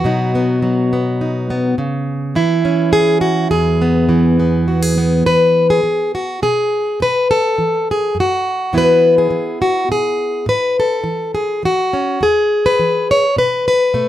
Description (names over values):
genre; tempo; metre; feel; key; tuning
folk, solo fingerstyle acoustic guitar; 104 BPM; 3/4; straight; E major; A4 = 443 Hz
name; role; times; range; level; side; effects
fingerpicked plugged-in steel-string acoustic guitar; solo; 0.0-14.1 s; E2 to C#5; -13 LUFS; equal; none
room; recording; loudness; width
light reverb; none; -13 LUFS; side -12 dB against mid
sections
0.0-5.3 A section; 5.3-14.1 B section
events
none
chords
0.0 B; 1.8 C#m; 3.5 E; 7.0 B7sus4; 8.7 E; 10.5 A; 12.2 E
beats
| 0.03 0.61 1.19 | 1.77 2.35 2.93 | 3.51 4.09 4.68 | 5.26 5.84 6.42 | 7.00 7.58 8.16 | 8.73 9.31 9.89 | 10.47 11.05 11.63 | 12.22 12.80 13.38 | 13.96